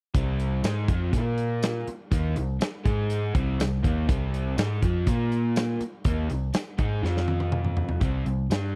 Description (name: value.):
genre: classic rock.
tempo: 122 BPM.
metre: 4/4.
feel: straight.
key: C minor.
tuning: A4 = 443 Hz.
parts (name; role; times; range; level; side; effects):
crunchy overdriven guitar; riff; 0.1-8.8 s; C3 to Bb4; -32 LUFS; equal; none.
hollow-body short-scale picked electric bass; bass; 0.1-8.8 s; C2 to Bb2; -30 LUFS; equal; none.
big rock drum kit; drums; 0.1-8.6 s; hi-hat, kick drum, snare drum, tambourine, toms; -30 LUFS; equal; none.
room: little or no reverb.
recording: dry, close 1970s-style studio recording.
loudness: -26 LUFS.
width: mono.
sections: 0.1-8.0 A section.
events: drum fill 7.0-8.0.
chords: 0.1 Cm; 1.1 Bb5; 1.9 Cm; 2.9 Ab5; 3.3 Cm; 5.1 Bb5; 5.8 Cm; 7.0 F5; 8.0 C5.